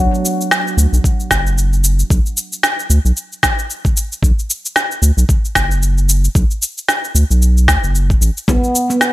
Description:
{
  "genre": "organic downtempo",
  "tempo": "113 BPM",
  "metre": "4/4",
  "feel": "swing 58% on 16ths",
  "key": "B minor pentatonic",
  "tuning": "A4 = 440 Hz",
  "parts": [
    { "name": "round analog bass", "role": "bass", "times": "0.0-8.6 s", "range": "F#1 to D2", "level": "-13 LUFS", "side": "equal", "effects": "none" },
    { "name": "electronic shaker and snare drum", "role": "drums", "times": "0.1-9.1 s", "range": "none", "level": "-16 LUFS", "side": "equal", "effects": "none" },
    { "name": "electronic kick drum", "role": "drums", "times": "1.0-8.6 s", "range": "none", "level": "-16 LUFS", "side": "equal", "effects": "overdrive" },
    { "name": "handpan", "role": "arpeggios", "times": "8.5-9.0 s", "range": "B3", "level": "-19 LUFS", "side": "right 1 dB", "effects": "digital delay" },
    { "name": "frame drum", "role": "percussion", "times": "8.5-8.6 s", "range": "none", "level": "-20 LUFS", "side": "left 2 dB", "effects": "none" }
  ],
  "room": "little or no reverb",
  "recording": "none",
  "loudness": "-12 LUFS",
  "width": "side -17 dB against mid",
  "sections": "0.0-9.1 A section",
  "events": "none",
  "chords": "0.0 B5",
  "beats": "0.51 1.04 1.57 | 2.11 2.64 3.17 3.70 | 4.23 4.76 5.29 5.82 | 6.35 6.88 7.42 7.95 | 8.48 9.01"
}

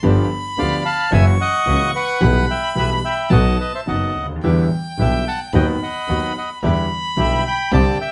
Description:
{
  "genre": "tango",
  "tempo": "110 BPM",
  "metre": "4/4",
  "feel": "rubato",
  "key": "E minor",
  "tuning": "A4 = 442 Hz",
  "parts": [
    { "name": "rich violin", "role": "second line", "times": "0.0-8.1 s", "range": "G5 to C#6", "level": "-28 LUFS", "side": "equal", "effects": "none" },
    { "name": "clear concert grand piano", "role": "accompaniment", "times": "0.0-7.9 s", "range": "F#1 to G4", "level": "-24 LUFS", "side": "equal", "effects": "none" },
    { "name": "bandoneon", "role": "stabs", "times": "0.0-7.9 s", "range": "A#3 to G4", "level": "-33 LUFS", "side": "equal", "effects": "none" },
    { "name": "clear double bass", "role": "bass", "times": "0.0-7.9 s", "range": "F#1 to E2", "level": "-21 LUFS", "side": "equal", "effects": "none" },
    { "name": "bandoneon", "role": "melody", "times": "0.6-8.1 s", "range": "B4 to B5", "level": "-24 LUFS", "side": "equal", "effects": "none" }
  ],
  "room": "light reverb",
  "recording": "nothing above 11.0 kHz",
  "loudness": "-18 LUFS",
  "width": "mono",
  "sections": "0.0-8.1 A section",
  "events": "none",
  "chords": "0.0 G7; 1.1 F#7; 2.2 Em/B; 3.3 B; 4.4 Em7; 5.5 B/D#; 6.6 Em7",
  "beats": "| 0.04 0.57 1.12 1.66 | 2.21 2.75 3.30 3.86 | 4.42 4.98 5.53 6.08 | 6.62 7.17 7.71"
}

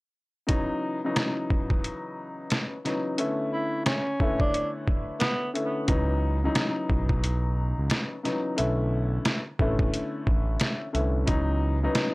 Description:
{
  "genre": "hip hop, boom-bap hip-hop",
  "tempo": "89 BPM",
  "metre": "4/4",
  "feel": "swing 61% on 16ths",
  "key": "unclear",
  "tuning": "A4 = 440 Hz",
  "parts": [
    { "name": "warm baby grand piano", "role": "accompaniment", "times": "0.5-12.1 s", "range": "C#3 to C#5", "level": "-29 LUFS", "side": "left 1 dB", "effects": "cassette tape, high-pass filter, low-pass filter" },
    { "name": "trip hop sampler-style drum kit", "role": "drums", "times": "0.5-12.1 s", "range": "hi-hat, kick drum, rim click, snare drum", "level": "-26 LUFS", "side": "equal", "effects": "none" },
    { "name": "breathy tenor saxophone", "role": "melody", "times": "3.5-5.5 s", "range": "B3 to E4", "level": "-30 LUFS", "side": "equal", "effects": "high-pass filter, low-pass filter, analog delay" },
    { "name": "smooth gliding synth bass", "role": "bass", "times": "5.9-11.9 s", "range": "A1 to C#2", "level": "-26 LUFS", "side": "equal", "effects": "none" }
  ],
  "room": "little or no reverb",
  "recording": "dry, gritty hardware recording",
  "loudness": "-24 LUFS",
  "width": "side -23 dB against mid",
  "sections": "0.5-5.9 A section; 5.9-12.1 B section",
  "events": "none",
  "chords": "0.5 C#m11; 3.2 Bm11; 5.9 C#m11; 8.6 Bm11; 11.3 C#m11",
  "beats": "| 0.49 1.17 1.84 2.52 | 3.19 3.86 4.54 5.21 | 5.89 6.56 7.23 7.91 | 8.58 9.26 9.93 10.61 | 11.28 11.95"
}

